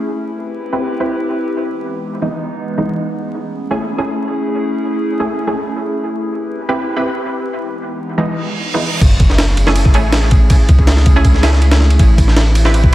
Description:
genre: drum and bass, jungle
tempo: 161 BPM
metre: 4/4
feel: straight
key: F# dorian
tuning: A4 = 440 Hz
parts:
  - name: warbly tape-like pad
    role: sustained chords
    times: 0.0-12.9 s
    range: E3 to B4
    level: -21 LUFS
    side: equal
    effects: chorus, built-in reverb, phaser
  - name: orchestra-hit-like synth stab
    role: stabs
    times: 0.7-12.9 s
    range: E3 to B4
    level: -20 LUFS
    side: right 1 dB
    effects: built-in reverb, dub echo
  - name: reverse cymbal and sub drop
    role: sound effects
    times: 8.4-10.5 s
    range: none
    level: -22 LUFS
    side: right 1 dB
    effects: none
  - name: long sustained 808-style bass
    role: bass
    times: 9.0-12.9 s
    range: F#1 to C#2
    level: -12 LUFS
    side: equal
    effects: none
  - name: breakbeat sampler-style drum kit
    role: drums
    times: 9.0-12.9 s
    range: crash cymbal, kick drum, ride cymbal, snare drum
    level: -11 LUFS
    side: equal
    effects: none
room: light reverb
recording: dense, heavily limited modern master, vinyl crackle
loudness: -12 LUFS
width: side -15 dB against mid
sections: 0.0-9.0 A section; 9.0-12.9 B section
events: filter sweep on synth stab 0.0-9.0; reverse cymbal 8.4-9.0; drop 9.0-12.9; impact 9.0-10.5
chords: 0.1 Cmaj7; 1.6 Emaj7; 3.0 Amaj7; 6.0 Cmaj7; 7.5 Emaj7; 9.0 F#m9; 12.0 Am9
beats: | 0.07 0.44 0.81 1.19 | 1.56 1.93 2.30 2.68 | 3.05 3.42 3.79 4.17 | 4.54 4.91 5.29 5.66 | 6.03 6.40 6.78 7.15 | 7.52 7.89 8.27 8.64 | 9.01 9.38 9.76 10.13 | 10.50 10.88 11.25 11.62 | 11.99 12.37 12.74

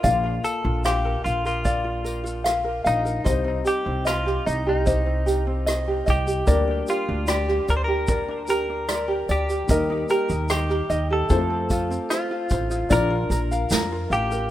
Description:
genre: acoustic pop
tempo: 75 BPM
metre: 4/4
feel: straight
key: Bb major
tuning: A4 = 439 Hz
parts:
  - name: direct-recorded clean electric guitar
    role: melody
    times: 0.0-14.5 s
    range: Eb4 to C5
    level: -28 LUFS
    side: equal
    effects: lush chorus, ping-pong delay
  - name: ukulele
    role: accompaniment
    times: 0.0-14.5 s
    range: C4 to F5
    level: -25 LUFS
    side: equal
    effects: none
  - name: warm upright piano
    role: accompaniment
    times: 0.0-14.5 s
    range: G3 to D5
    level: -32 LUFS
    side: left 5 dB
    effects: none
  - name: upright bass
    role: bass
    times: 0.0-14.5 s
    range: A1 to F2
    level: -26 LUFS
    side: equal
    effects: none
  - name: unplugged drum kit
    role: drums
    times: 0.0-14.5 s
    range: kick drum, rim click, shaker, snare drum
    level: -27 LUFS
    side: equal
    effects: none
  - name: tambourine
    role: percussion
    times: 0.0-13.9 s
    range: none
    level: -40 LUFS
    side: right 2 dB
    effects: none
room: small room ambience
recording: rough home demo mix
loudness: -20 LUFS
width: side -13 dB against mid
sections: 0.0-12.9 A section; 12.9-14.5 B section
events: none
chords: 0.0 Bb; 3.3 Cm; 6.5 Gm/D; 9.7 Eb; 11.3 F; 12.9 Bb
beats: | 0.04 0.84 1.65 2.46 | 3.26 4.07 4.87 5.68 | 6.48 7.29 8.09 8.90 | 9.70 10.51 11.31 12.11 | 12.91 13.71

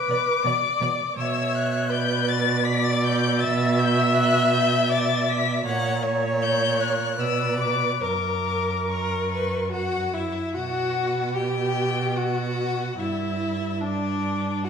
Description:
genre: classical, slow romantic movement for string quartet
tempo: 69-84 BPM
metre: 3/4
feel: rubato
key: B minor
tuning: A4 = 440 Hz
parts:
  - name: rich violin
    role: melody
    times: 0.0-14.7 s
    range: D5 to B6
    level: -27 LUFS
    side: left 9 dB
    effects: none
  - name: clear viola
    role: accompaniment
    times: 0.0-14.7 s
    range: D4 to E5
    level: -28 LUFS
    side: right 2 dB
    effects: none
  - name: rich violin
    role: second line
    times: 0.1-14.7 s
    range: D4 to F#5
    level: -28 LUFS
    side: left 3 dB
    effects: none
  - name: rich cello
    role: bass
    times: 0.1-14.7 s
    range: F#2 to B2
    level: -26 LUFS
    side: right 4 dB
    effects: none
room: wet recital hall reverb, RT60 1.4 s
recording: minimal, uncompressed stereo recording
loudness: -21 LUFS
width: side -7 dB against mid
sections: 0.0-10.6 A section; 10.6-14.7 B section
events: none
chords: 0.0 Bm; 3.4 E5/B; 5.7 F#/A#; 7.2 Bm; 8.0 F#; 10.6 B5; 13.0 G5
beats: 0.44 | 1.17 1.90 2.65 | 3.40 4.15 4.90 | 5.66 6.41 7.19 | 8.02 8.88 9.73 | 10.55 11.36 12.16 | 12.98 13.81 14.64

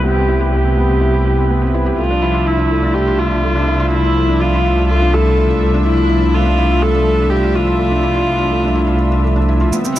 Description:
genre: piano and strings electronica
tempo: 124 BPM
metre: 4/4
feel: straight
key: unclear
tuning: A4 = 440 Hz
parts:
  - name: dark viola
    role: melody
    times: 0.0-9.2 s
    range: E4 to A4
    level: -18 LUFS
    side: left 1 dB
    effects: ping-pong delay
  - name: lush unison pad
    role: sustained chords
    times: 0.0-10.0 s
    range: C3 to E5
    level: -23 LUFS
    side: right 1 dB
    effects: chorus
  - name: felt-muted upright piano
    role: riff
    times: 0.0-10.0 s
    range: A3 to G4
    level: -19 LUFS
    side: equal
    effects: ping-pong delay
  - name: dark studio double bass section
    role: bass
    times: 0.0-10.0 s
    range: C2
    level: -16 LUFS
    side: equal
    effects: high-pass filter
  - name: shaker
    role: drums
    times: 9.7-10.0 s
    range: none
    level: -23 LUFS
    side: right 6 dB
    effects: overdrive, high-pass filter on perc, low-pass filter on perc, high-pass filter on room, low-pass filter on room
  - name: riser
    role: sound effects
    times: 9.8-10.0 s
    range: none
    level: -31 LUFS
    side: right 1 dB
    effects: none
room: studio ambience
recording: low-pass filter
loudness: -12 LUFS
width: side -13 dB against mid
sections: 0.0-9.7 A section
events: riser 9.8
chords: 0.0 Cmaj7; 2.0 Dmadd9/C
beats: | 0.05 0.54 1.02 1.50 | 1.99 2.47 2.96 3.44 | 3.92 4.41 4.89 5.38 | 5.86 6.34 6.83 7.31 | 7.79 8.28 8.76 9.25 | 9.73

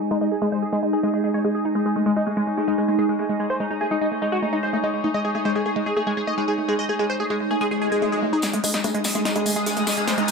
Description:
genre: psychedelic trance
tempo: 146 BPM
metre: 4/4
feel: straight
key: unclear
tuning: A4 = 440 Hz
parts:
  - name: evolving wavetable pad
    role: sustained chords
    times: 0.0-10.3 s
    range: G#3 to G#4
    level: -26 LUFS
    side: right 2 dB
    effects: chorus, built-in reverb, phaser
  - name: dark studio string section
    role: texture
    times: 0.0-10.3 s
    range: G#3 to D#6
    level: -29 LUFS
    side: left 2 dB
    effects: none
  - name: supersaw stab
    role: melody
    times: 0.1-10.3 s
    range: G#3 to D#5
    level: -26 LUFS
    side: equal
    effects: phaser, cassette tape, dub echo
  - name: woody wave-folded pluck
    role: riff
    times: 0.1-10.3 s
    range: G#3 to D#4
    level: -26 LUFS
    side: left 1 dB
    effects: chorus, auto-pan, dub echo
  - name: swell and riser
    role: sound effects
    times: 7.7-10.3 s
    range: none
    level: -29 LUFS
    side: left 3 dB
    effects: none
  - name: big-room dance drum kit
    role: drums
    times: 8.4-10.3 s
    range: bongos, hi-hat, snare drum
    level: -26 LUFS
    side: equal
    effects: overdrive, high-pass filter on snare, high-pass filter on hats, high-pass filter on perc, high-pass filter on room
  - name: tambourine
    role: percussion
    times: 8.4-10.3 s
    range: none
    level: -29 LUFS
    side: left 4 dB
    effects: none
room: moderate plate reverb, RT60 1.4 s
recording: low-pass filter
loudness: -20 LUFS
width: side -4 dB against mid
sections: 0.0-8.4 A section; 8.4-10.3 B section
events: filter sweep on synth arpeggio sound 0.0-8.4, 8.4-10.3; filter sweep 0.0-8.4; swell 7.7-8.4; build-up 8.4-10.3; drum fill 8.4-10.3; riser 8.4-10.3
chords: 0.0 G#5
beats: | 0.21 0.62 1.03 1.45 | 1.86 2.27 2.68 3.09 | 3.50 3.91 4.32 4.73 | 5.14 5.55 5.97 6.38 | 6.79 7.20 7.61 8.02 | 8.43 8.84 9.25 9.66 | 10.07

